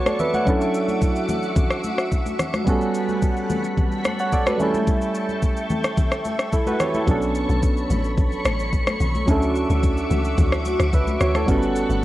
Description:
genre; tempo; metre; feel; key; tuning
amapiano; 109 BPM; 4/4; straight; unclear; A4 = 438 Hz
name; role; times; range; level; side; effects
soft electric-piano-like synth keys; accompaniment; 0.0-12.0 s; F#3 to F#5; -23 LUFS; right 2 dB; chorus
ensemble organ-string; sustained chords; 0.0-12.0 s; G3 to D6; -27 LUFS; equal; ensemble chorus, sidechain pumping
smooth R&B drum kit; drums; 0.1-12.0 s; kick drum, rim click, shaker; -22 LUFS; equal; none
congas; percussion; 0.1-12.0 s; none; -30 LUFS; left 2 dB; none
deep log drum bass; bass; 7.1-12.0 s; G1 to D2; -23 LUFS; equal; none
room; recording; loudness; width
light reverb; worn, warbling old tape, cassette tape, warbly pitch drift; -19 LUFS; side -15 dB against mid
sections
0.0-12.0 A section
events
none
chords
0.5 Dmaj9; 2.7 Gmaj9#11; 4.6 A7; 7.1 Bm9; 9.3 Dmaj9; 11.5 Gmaj9#11

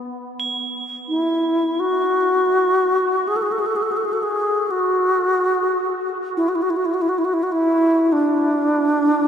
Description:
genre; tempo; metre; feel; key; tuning
world meditative, free-time meditation music; free time; none; none; unclear; A4 = 440 Hz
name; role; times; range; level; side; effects
crotales; texture; 0.4-8.3 s; G#7; -29 LUFS; right 4 dB; none
bright reedy wooden-headed alto flute; melody; 1.1-9.3 s; D4 to A4; -17 LUFS; equal; tape echo
room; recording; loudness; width
wet huge ambient reverb, RT60 8.6 s; in a vast, echoing space; -17 LUFS; side -8 dB against mid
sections
0.1-9.3 A section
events
none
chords
none

